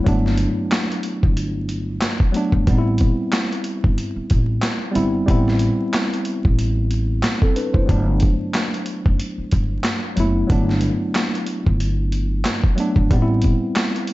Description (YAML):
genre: hip hop, boom-bap hip-hop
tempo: 92 BPM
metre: 4/4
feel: swing 56% on 16ths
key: G major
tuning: A4 = 440 Hz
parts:
  - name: mellow tine electric piano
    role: accompaniment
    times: 0.0-14.1 s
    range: F#3 to C5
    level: -22 LUFS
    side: equal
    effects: medium stereo tremolo, cassette tape, high-pass filter, low-pass filter
  - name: upright bass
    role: bass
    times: 0.1-13.5 s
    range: F#1 to A1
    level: -21 LUFS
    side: equal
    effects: none
  - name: boom bap sampler-style drum kit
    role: drums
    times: 0.1-14.1 s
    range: handclaps, hi-hat, kick drum, snare drum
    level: -20 LUFS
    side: equal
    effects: none
room: light reverb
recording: vinyl crackle, nothing above 7.9 kHz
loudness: -17 LUFS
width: side -18 dB against mid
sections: 0.0-14.1 A section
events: none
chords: 0.0 Gmaj9; 2.7 Am9; 7.9 Gmaj9; 13.1 Am9